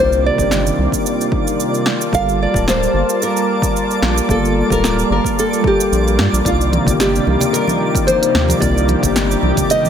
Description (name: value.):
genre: sunset chillout.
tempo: 111 BPM.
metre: 4/4.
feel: swing 53% on 16ths.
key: C dorian.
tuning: A4 = 441 Hz.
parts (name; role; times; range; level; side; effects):
nylon-string guitar; melody; 0.0-9.9 s; F4 to F5; -19 LUFS; equal; ping-pong delay.
soft electric-piano-like synth keys; accompaniment; 0.0-9.9 s; C3 to A5; -21 LUFS; equal; chorus, auto-pan, ping-pong delay.
lush unison pad; sustained chords; 0.0-9.9 s; C3 to A5; -20 LUFS; left 1 dB; chorus.
round analog bass; bass; 0.0-9.5 s; D1 to G2; -19 LUFS; equal; none.
twinkling granular texture; texture; 0.0-9.9 s; D5 to D6; -26 LUFS; equal; built-in reverb.
deep house drum kit; drums; 0.1-9.9 s; hi-hat, shaker, snare drum; -22 LUFS; right 1 dB; none.
electronic kick drum; drums; 0.4-9.7 s; none; -22 LUFS; equal; none.
congas; percussion; 6.7-9.9 s; none; -24 LUFS; right 2 dB; none.
room: light reverb.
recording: none.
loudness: -13 LUFS.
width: side -8 dB against mid.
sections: 0.0-9.9 A section.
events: none.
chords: 0.0 Cm11; 1.9 Gm9; 6.5 Cm11.